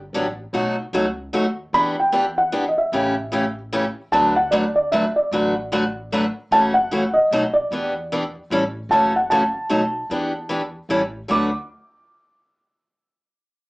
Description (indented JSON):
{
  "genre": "acoustic string swing (jazz manouche)",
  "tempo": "151 BPM",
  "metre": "3/4",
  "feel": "swing 62% on 8ths",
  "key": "D major",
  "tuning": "A4 = 440 Hz",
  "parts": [
    { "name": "upright bass", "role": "bass", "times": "0.0-11.5 s", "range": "F#1 to E2", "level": "-37 LUFS", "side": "equal", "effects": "none" },
    { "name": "picked steel-string acoustic guitar", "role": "accompaniment", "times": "0.1-11.5 s", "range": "B2 to B4", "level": "-21 LUFS", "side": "equal", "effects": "none" },
    { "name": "felt-muted upright piano", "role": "melody", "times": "1.7-11.5 s", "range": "D5 to D6", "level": "-19 LUFS", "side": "equal", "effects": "none" }
  ],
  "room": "wet small room ambience, RT60 0.5 s",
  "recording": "heard from further back in the room, small speaker sound",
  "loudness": "-18 LUFS",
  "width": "side -24 dB against mid",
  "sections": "0.0-6.5 A section; 6.5-11.3 B section; 11.3-12.5 C section",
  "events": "none",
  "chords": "0.0 Gmaj7; 0.5 B7; 1.7 Em7; 2.9 A7; 4.1 D6; 6.5 F#m7; 7.3 B7; 7.7 Em7; 8.5 A7; 8.9 F#m7; 9.7 B7; 10.1 Em7; 10.9 A7; 11.3 D6"
}